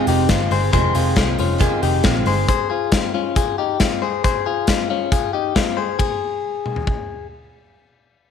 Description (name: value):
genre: jangly indie pop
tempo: 137 BPM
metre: 4/4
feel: straight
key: F minor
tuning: A4 = 436 Hz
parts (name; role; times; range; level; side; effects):
- picked steel-string acoustic guitar; accompaniment; 0.0-2.5 s; F2 to C4; -24 LUFS; right 13 dB; none
- direct-recorded clean electric guitar; arpeggios; 0.0-7.3 s; C4 to C5; -21 LUFS; left 10 dB; none
- vintage muted picked electric bass; bass; 0.1-2.5 s; F1 to C2; -20 LUFS; right 2 dB; none
- big rock drum kit; drums; 0.1-7.0 s; hi-hat, kick drum, ride cymbal, snare drum, toms; -21 LUFS; left 1 dB; none
room: light reverb, small room ambience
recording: 1960s-style stereo with parts hard left and right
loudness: -17 LUFS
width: side -7 dB against mid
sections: 0.0-6.0 A section; 6.0-8.3 B section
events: none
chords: 0.0 Fm7; 6.0 N.C.